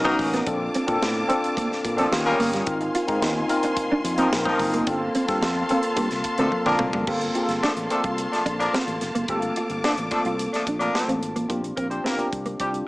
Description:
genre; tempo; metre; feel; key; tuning
polished 1980s jazz-funk pop; 109 BPM; 4/4; straight; unclear; A4 = 442 Hz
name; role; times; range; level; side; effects
warm horn section; second line; 0.0-12.7 s; F3 to C5; -26 LUFS; left 1 dB; none
mellow tine electric piano; accompaniment; 0.0-12.9 s; A3 to A5; -25 LUFS; equal; slow stereo tremolo, analog chorus
warm symphonic string section; sustained chords; 0.0-11.5 s; Bb3 to Eb6; -30 LUFS; left 1 dB; none
fingered electric bass; bass; 0.0-12.8 s; F1 to Bb2; -31 LUFS; equal; none
mellow electric guitar; riff; 0.1-12.7 s; G3 to G4; -27 LUFS; right 1 dB; ensemble chorus
crisp fusion drum kit; drums; 0.1-12.9 s; crash cymbal, hi-hat, kick drum, snare drum, toms; -31 LUFS; equal; none
room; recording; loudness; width
light reverb, small room ambience; small speaker sound; -21 LUFS; side -20 dB against mid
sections
0.0-7.1 A section; 7.1-11.5 B section; 11.5-12.9 C section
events
drum fill 6.5-7.1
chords
0.5 Bbmaj7; 2.1 Eb9; 2.7 Ab69; 4.9 Gm11; 11.5 Bb69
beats
| 0.46 1.01 1.56 2.12 | 2.67 3.22 3.77 4.32 | 4.87 5.42 5.97 6.52 | 7.08 7.63 8.18 8.73 | 9.28 9.84 10.39 10.94 | 11.49 12.05 12.60

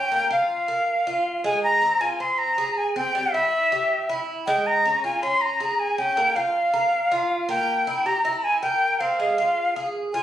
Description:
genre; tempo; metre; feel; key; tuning
latin; 159 BPM; 4/4; straight; F minor; A4 = 436 Hz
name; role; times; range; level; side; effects
jazz flute; melody; 0.0-10.2 s; E5 to C6; -21 LUFS; equal; none
Cuban tres; arpeggios; 0.0-10.2 s; G3 to Bb4; -28 LUFS; right 2 dB; none
room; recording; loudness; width
moderate studio ambience, RT60 0.5 s; recorded on a phone in the room, club reverb; -20 LUFS; side -11 dB against mid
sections
0.0-10.2 A section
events
none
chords
0.1 Bb5; 1.6 Fm; 3.1 Em/G; 4.7 Db5; 6.2 Bb5; 7.7 C7; 9.2 Fm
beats
| 0.12 0.50 0.88 1.25 | 1.63 2.01 2.39 2.77 | 3.14 3.52 3.90 4.28 | 4.66 5.03 5.41 5.79 | 6.17 6.54 6.92 7.30 | 7.68 8.06 8.44 8.81 | 9.19 9.57 9.95

